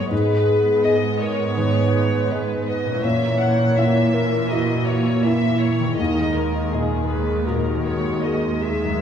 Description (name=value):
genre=cinematic, emotional film score for orchestra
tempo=81 BPM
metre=4/4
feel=rubato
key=unclear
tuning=A4 = 444 Hz
part: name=warm studio violin section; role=second line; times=0.0-9.0 s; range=G#4 to F#5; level=-27 LUFS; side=left 4 dB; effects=none
part: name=dark baby grand piano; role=accompaniment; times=0.0-9.0 s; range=D#2 to E5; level=-26 LUFS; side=left 1 dB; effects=none
part: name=dark studio viola section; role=accompaniment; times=0.0-9.0 s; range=D#3 to B3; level=-26 LUFS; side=right 1 dB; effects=none
part: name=concert harp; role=arpeggios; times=0.0-9.0 s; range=F#2 to A#5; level=-31 LUFS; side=left 2 dB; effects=none
part: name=warm studio cello section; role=bass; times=0.0-9.0 s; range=D#2 to A#2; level=-24 LUFS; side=right 3 dB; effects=none
part: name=mellow hollow alto flute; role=melody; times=0.1-9.0 s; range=D#4 to C#5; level=-23 LUFS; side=left 1 dB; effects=none
room=wet scoring stage reverb, RT60 1.7 s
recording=heard from further back in the room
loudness=-18 LUFS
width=side -8 dB against mid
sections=0.0-9.0 A section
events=none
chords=0.1 G#m; 3.0 A#dim; 6.0 D#sus4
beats=| 0.12 0.84 1.58 2.31 | 3.04 3.78 4.52 5.25 | 5.99 6.73 7.47 8.23